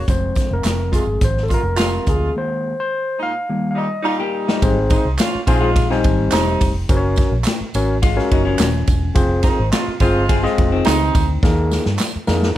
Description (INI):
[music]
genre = uptempo 1960s-style soul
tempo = 106 BPM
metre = 4/4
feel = straight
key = Ab major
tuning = A4 = 444 Hz
[part]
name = mellow saxophone section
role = second line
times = 0.0-11.3 s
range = Bb2 to F4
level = -22 LUFS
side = right 3 dB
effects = none
[part]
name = overdriven tine electric piano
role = accompaniment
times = 0.0-12.6 s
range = Eb3 to Ab5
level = -21 LUFS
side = left 2 dB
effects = none
[part]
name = vintage hollow-body jazz guitar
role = riff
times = 0.0, 4.1-11.4 s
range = Eb3 to Ab4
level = -23 LUFS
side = left 6 dB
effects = none
[part]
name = vintage muted fingered electric bass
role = bass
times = 0.0-12.5 s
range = Eb1 to G2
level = -20 LUFS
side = equal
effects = none
[part]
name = swinging big-band drum kit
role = drums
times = 0.1-12.6 s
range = hi-hat, kick drum, ride cymbal, snare drum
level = -19 LUFS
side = equal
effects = none
[part]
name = tambourine and handclaps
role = percussion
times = 0.1-12.4 s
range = none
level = -30 LUFS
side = right 5 dB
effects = none
[sound]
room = light reverb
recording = none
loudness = -15 LUFS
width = side -13 dB against mid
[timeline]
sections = 0.0-4.6 A section; 4.6-12.6 B section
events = tine electric piano solo 0.0-4.6; break 2.4-4.6; drum fill 3.5-4.6, 11.4-12.6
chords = 0.1 Fm; 2.4 Ebsus4; 3.5 Eb; 4.6 Ab; 6.9 Gb; 9.2 Fm; 11.4 Ebsus4